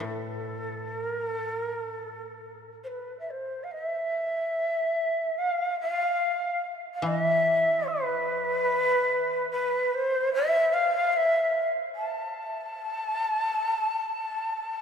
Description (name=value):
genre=japanese traditional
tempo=62-75 BPM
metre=4/4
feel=rubato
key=A hirajoshi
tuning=A4 = 442 Hz
part: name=breathy shakuhachi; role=melody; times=0.0-14.8 s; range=A4 to A5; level=-26 LUFS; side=equal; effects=none
part: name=koto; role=accompaniment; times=0.0-9.5 s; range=A2 to E3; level=-36 LUFS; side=equal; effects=none
room=moderate cathedral reverb, RT60 5.2 s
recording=minimal, uncompressed stereo recording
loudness=-25 LUFS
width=side -7 dB against mid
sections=0.0-3.7 A section; 3.7-14.8 B section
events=none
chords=none